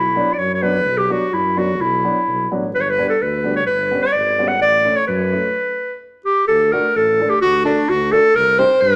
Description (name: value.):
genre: klezmer.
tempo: 128 BPM.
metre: 2/4.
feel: straight.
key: B minor.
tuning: A4 = 442 Hz.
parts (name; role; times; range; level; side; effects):
clear clarinet; melody; 0.0-9.0 s; D4 to F#5; -18 LUFS; equal; none.
mellow tuba; bass; 0.0-9.0 s; G1 to G2; -28 LUFS; equal; none.
dark upright piano; accompaniment; 0.2-8.7 s; F#3 to A4; -27 LUFS; equal; none.
room: moderate large studio reverb, RT60 1.2 s.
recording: nothing above 10.8 kHz.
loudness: -17 LUFS.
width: mono.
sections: 0.0-6.5 A section; 6.5-9.0 B section.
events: stop 5.6-6.5.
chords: 0.0 Bm; 2.7 G; 4.6 A; 5.6 N.C.; 6.5 D; 8.4 Cm.